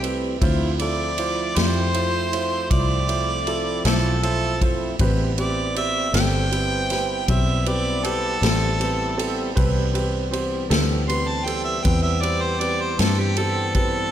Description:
slow blues; 52 BPM (dotted quarters); 12/8; straight; A minor; A4 = 439 Hz
clear harmonica; second line; 0.0-14.1 s; G4 to C6; -25 LUFS; right 1 dB; overdrive, tape echo, slapback echo
warm upright piano; accompaniment; 0.0-14.0 s; C4 to D5; -27 LUFS; right 3 dB; slapback echo
tonewheel organ; sustained chords; 0.0-14.1 s; E3 to E4; -30 LUFS; left 2 dB; slow rotary speaker
fingered electric bass; bass; 0.0-14.1 s; G1 to G2; -24 LUFS; equal
swinging big-band drum kit; drums; 0.0-13.9 s; kick drum, ride cymbal, snare drum; -26 LUFS; equal
moderate lush hall reverb, RT60 2.6 s; big arena sound; -19 LUFS; side -10 dB against mid
0.0-14.1 A section
harmonica solo 0.0-14.1
0.4 Dm9; 5.0 Am9

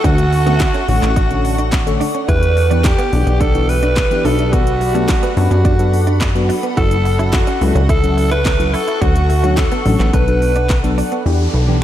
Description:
dance-pop; 107 BPM; 4/4; straight; B minor; A4 = 441 Hz
raspy alto saxophone; melody; 0.0-11.8 s; F#4 to B4; -20 LUFS; right 1 dB; analog delay
deep mellow chord stab; accompaniment; 0.0-11.8 s; D3 to A4; -21 LUFS; left 2 dB; chorus, sidechain pumping
granular cloud pad; sustained chords; 0.0-11.8 s; G4 to C#6; -24 LUFS; left 1 dB; built-in reverb, sidechain pumping
direct-recorded clean electric guitar; riff; 0.0-11.2 s; A3 to F#4; -26 LUFS; right 4 dB; ensemble chorus
plucky analog bass; bass; 0.0-11.8 s; F#1 to F#2; -16 LUFS; equal; sidechain pumping
house drum kit; drums; 0.0-11.2 s; handclaps, hi-hat, kick drum, snare drum; -18 LUFS; equal
downlifter; sound effects; 11.3-11.8 s; -27 LUFS; equal
moderate lush hall reverb, RT60 2.5 s; dreamy mix soaked in reverb; -12 LUFS; side -12 dB against mid
0.0-11.3 A section
0.0 Dmaj7; 2.3 Em7; 4.2 Bm7; 6.8 F#m7; 9.0 Dmaj7; 10.1 Bm7; 11.3 Em7

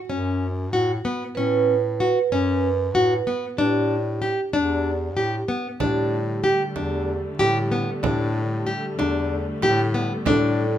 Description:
contemporary instrumental, chamber music in an uneven meter; 189 BPM (eighths); 7/8; straight; A mixolydian; A4 = 439 Hz
vibraphone with soft mallets; second line; 0.0-10.8 s; F#4 to B4; -27 LUFS; right 6 dB
nylon-string guitar; arpeggios; 0.1-10.6 s; B3 to G4; -23 LUFS; left 2 dB
bright bass clarinet; bass; 0.1-10.8 s; E2 to A2; -27 LUFS; left 1 dB
dark studio string section; sustained chords; 5.8-10.8 s; D3 to A3; -31 LUFS; left 1 dB
frame drum; percussion; 5.8-10.6 s; -29 LUFS; right 6 dB
light reverb; close, detailed microphones; -20 LUFS; side -10 dB against mid
0.0-5.8 A section; 5.8-10.8 B section
0.0 Bsus2; 3.6 A7sus4

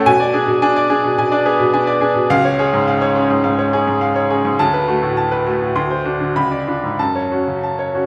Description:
classical, virtuoso piano study; 94-108 BPM; 4/4; rubato; A4 = 440 Hz
bright baby grand piano; solo; 0.0-8.1 s; C#2 to C6; -16 LUFS; equal
wet recital hall reverb, RT60 1.5 s; recorded in a church or concert hall; -17 LUFS; mono
0.0-8.1 A section
0.1 G#dim/B; 2.3 C#; 4.6 D6; 5.8 D7; 6.4 C#7b9; 7.0 F#m

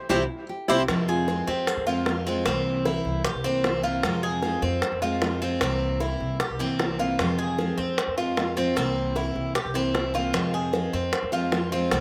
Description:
latin, Cuban son and guajira; 152 BPM; 4/4; straight; F minor; A4 = 441 Hz
nylon-string guitar; second line; 0.0-2.5 s; E4 to Ab4; -36 LUFS; equal; slapback echo
Cuban tres; melody; 0.1-0.8 s; E4 to C5; -30 LUFS; equal; slapback echo
picked steel-string acoustic guitar; accompaniment; 0.1-12.0 s; C3 to F4; -30 LUFS; equal; slapback echo
Cuban tres; arpeggios; 0.1-12.0 s; C4 to Ab4; -30 LUFS; equal; slapback echo
upright bass; bass; 0.1-12.0 s; C2 to F2; -35 LUFS; equal
bongos; percussion; 0.1-12.0 s; -32 LUFS; equal; slapback echo
little or no reverb; recorded outdoors, with no room sound; -26 LUFS; mono
0.9-12.0 A section
band accent 0.0-0.9
0.0 C; 0.9 Fm; 2.5 C7; 4.0 Fm; 5.6 C7; 7.2 Fm; 8.8 C7; 10.3 Fm

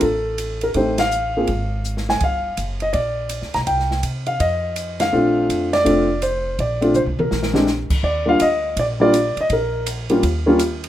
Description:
jazz piano trio; 164 BPM; 4/4; swing 64% on 8ths; Bb major; A4 = 440 Hz
warm baby grand piano; melody; 0.0-10.6 s; G3 to Bb5; -18 LUFS; equal; plate reverb
upright bass; bass; 0.0-10.9 s; F1 to C3; -25 LUFS; equal
open jazz drum kit; drums; 0.0-10.9 s; crash cymbal, hi-hat, kick drum, ride cymbal, snare drum, toms; -27 LUFS; equal
wet small room reverb, RT60 0.5 s; rough home demo mix; -17 LUFS; side -12 dB against mid
0.0-8.0 A section; 8.0-10.9 B section
band accent 0.9, 4.9; drum fill 1.8-2.2, 7.0-7.7
0.0 N.C.; 1.5 Fm/Ab; 2.2 Gm7; 3.7 C5; 4.4 Ebsus2/F; 5.1 Bbmaj9; 7.3 N.C.; 8.0 Ebmaj7sus2; 9.5 N.C.

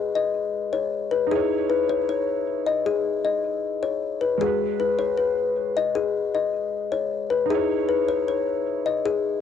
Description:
hip hop; 155 BPM; 4/4; half-time; G# minor; A4 = 437 Hz
kalimba; melody; 0.0-9.4 s; G#4 to D#5; -22 LUFS; left 6 dB; cassette tape, analog delay
felt-muted upright piano; accompaniment; 0.0-9.4 s; G#3 to C#5; -31 LUFS; right 14 dB
light reverb; home recording on cassette; -22 LUFS; side -8 dB against mid
0.0-9.4 A section
0.0 G#m7; 1.3 C#madd9; 4.4 G#m7; 7.5 C#madd9

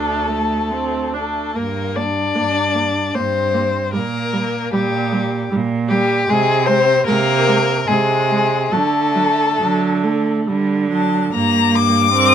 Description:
classical, slow romantic movement for string quartet; 67-78 BPM; 3/4; rubato; G minor; A4 = 441 Hz
dark violin; melody; 0.0-12.3 s; G3 to D6; -21 LUFS; left 8 dB
warm violin; second line; 0.0-12.3 s; G4 to D5; -19 LUFS; left 2 dB
warm viola; accompaniment; 0.0-12.3 s; F#3 to D4; -20 LUFS; right 3 dB
rich cello; bass; 0.0-12.3 s; D2 to D3; -21 LUFS; right 5 dB
light reverb; close, detailed microphones; -15 LUFS; side -8 dB against mid
0.0-11.3 A section; 11.3-12.3 A section
0.0 D5; 1.6 Gm; 4.0 Gm/Bb; 6.3 Ab/C; 8.7 D; 11.3 Gm

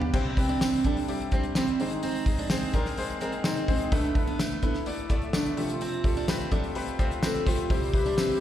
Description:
piano-driven pop; 127 BPM; 4/4; straight; C major; A4 = 442 Hz
hollow clarinet-like synth lead; melody; 0.0-8.4 s; B3 to A4; -30 LUFS; right 1 dB; chorus, slapback echo, tape echo
warm grand piano; accompaniment; 0.0-8.4 s; F1 to F5; -31 LUFS; left 3 dB; slapback echo
damped 70s drum kit; drums; 0.0-8.4 s; crash cymbal, hi-hat, kick drum, snare drum, toms; -28 LUFS; equal
picked steel-string acoustic guitar; riff; 0.1-8.4 s; A3 to D4; -36 LUFS; right 7 dB; slapback echo
tambourine; percussion; 0.6-8.3 s; -39 LUFS; left 3 dB
warm chamber string section; sustained chords; 7.7-8.4 s; C3 to E4; -36 LUFS; equal
light reverb; live gig heard through the venue's PA, recital hall reverb; -24 LUFS; side -11 dB against mid
0.1-8.4 A section
0.1 C; 1.8 Ab; 3.9 Asus2; 5.6 Fadd9; 7.7 C

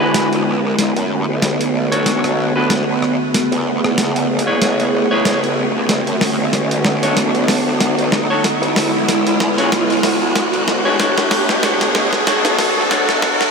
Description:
glitch hop; 94 BPM; 4/4; swing 56% on 16ths; B dorian; A4 = 441 Hz
warbly tape-like pad; sustained chords; 0.0-13.5 s; C#3 to G#4; -19 LUFS; right 1 dB; chorus, built-in reverb
clean electric guitar; stabs; 0.0-13.5 s; D4 to C#5; -21 LUFS; left 1 dB; vintage 12-bit sampler grit, low-pass filter, ping-pong delay
growl bass; bass; 0.0-13.4 s; A1 to F#2; -21 LUFS; equal; chorus, tube saturation, high-pass filter
riser; sound effects; 1.6-13.5 s; -22 LUFS; equal
boom bap sampler-style drum kit; drums; 0.1-13.5 s; hi-hat, rim click, snare drum; -20 LUFS; equal
wet huge ambient reverb, RT60 8.3 s; dreamy mix soaked in reverb, high-pass filter; -14 LUFS; side -4 dB against mid
0.0-13.5 A section
build-up 0.0-13.5; drum fill 0.0-13.5; riser 1.6-13.5
0.0 E7; 0.8 Bm7; 3.3 Amaj9; 5.9 Bm7; 8.4 E7; 11.0 Bm7

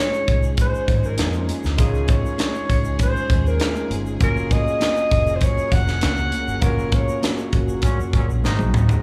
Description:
lush 1970s-style soul; 99 BPM; 4/4; straight; Db major; A4 = 440 Hz
breathy alto saxophone; melody; 0.0-8.7 s; Gb4 to Gb5; -27 LUFS; equal; slapback echo, tape echo
overdriven tine electric piano; accompaniment; 0.0-9.0 s; Ab3 to Db5; -31 LUFS; equal
warm studio string section; sustained chords; 0.0-9.0 s; Gb3 to Bb4; -37 LUFS; equal
tube shaker; percussion; 0.1-9.0 s; -49 LUFS; equal
vintage muted fingered electric bass; bass; 0.3-9.0 s; F1 to Gb2; -24 LUFS; equal
tight funk drum kit; drums; 0.3-9.0 s; hi-hat, kick drum, snare drum, toms; -23 LUFS; equal
congas; percussion; 0.6-8.7 s; -36 LUFS; equal
clear trombone section; stabs; 7.8-9.0 s; Bb2 to Eb4; -32 LUFS; equal; slapback echo, tape echo
small room ambience; live gig heard through the venue's PA, club reverb; -20 LUFS; mono
0.0-9.0 A section
band accent 6.6-9.0; drum fill 8.4-9.0
0.0 Dbmaj9; 4.2 Gbmaj7; 8.4 Ab7

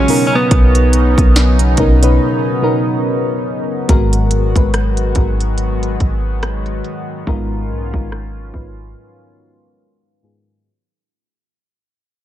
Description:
contemporary R&B; 71 BPM; 4/4; swing 58% on 16ths; A4 = 440 Hz
direct-recorded clean electric guitar; melody; 0.0-1.6 s; B3 to C#4; -16 LUFS; right 1 dB; ping-pong delay
mellow FM electric piano; accompaniment; 0.0-10.7 s; G#2 to B4; -19 LUFS; left 2 dB; chorus
chorused pulse-width pad; sustained chords; 0.0-10.6 s; C#3 to F#4; -21 LUFS; equal
warm 808-style bass; bass; 0.0-8.9 s; G#1 to B1; -15 LUFS; equal
trap drum kit; drums; 0.1-8.8 s; hi-hat, kick drum, rim click, snare drum; -16 LUFS; equal
little or no reverb; low-pass filter; -12 LUFS; side -12 dB against mid
0.0-3.9 A section; 3.9-10.7 B section
break 2.2-3.9, 9.0-10.7; fade-out 3.9-10.7
0.1 Bmaj9; 3.9 G#m9; 7.3 C#13/G#

